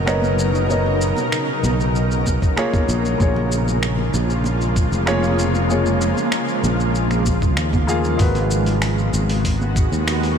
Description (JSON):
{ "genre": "sunset chillout", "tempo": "96 BPM", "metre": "4/4", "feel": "straight", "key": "unclear", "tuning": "A4 = 440 Hz", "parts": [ { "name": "warm grand piano", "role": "accompaniment", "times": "0.0-10.4 s", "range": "G#3 to E#5", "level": "-24 LUFS", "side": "left 1 dB", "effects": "auto-pan, ping-pong delay" }, { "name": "shimmering ambient pad", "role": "sustained chords", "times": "0.0-10.4 s", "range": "B2 to A#4", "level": "-22 LUFS", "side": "equal", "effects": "chorus, built-in reverb" }, { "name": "sustaining fretless electric bass", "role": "bass", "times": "0.0-10.4 s", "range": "E#1 to D#2", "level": "-20 LUFS", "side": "equal", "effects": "none" }, { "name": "dusty soul sampler-style drum kit", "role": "drums", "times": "0.1-10.4 s", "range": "finger snaps, hi-hat, shaker", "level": "-28 LUFS", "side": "equal", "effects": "small room ambience" }, { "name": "congas", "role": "percussion", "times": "0.1-9.7 s", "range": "none", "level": "-30 LUFS", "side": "right 2 dB", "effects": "none" }, { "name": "electronic kick drum", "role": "drums", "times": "2.3-9.9 s", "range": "none", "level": "-19 LUFS", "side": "equal", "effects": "small room ambience" } ], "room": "light reverb", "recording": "none", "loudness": "-16 LUFS", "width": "side -7 dB against mid", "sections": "0.0-8.2 A section; 8.2-10.4 B section", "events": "none", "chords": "0.0 Bmaj9; 2.9 A#m7; 8.2 G#m9", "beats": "0.07 | 0.70 1.32 1.95 2.58 | 3.20 3.83 4.45 5.08 | 5.70 6.33 6.95 7.58 | 8.20 8.82 9.45 10.07" }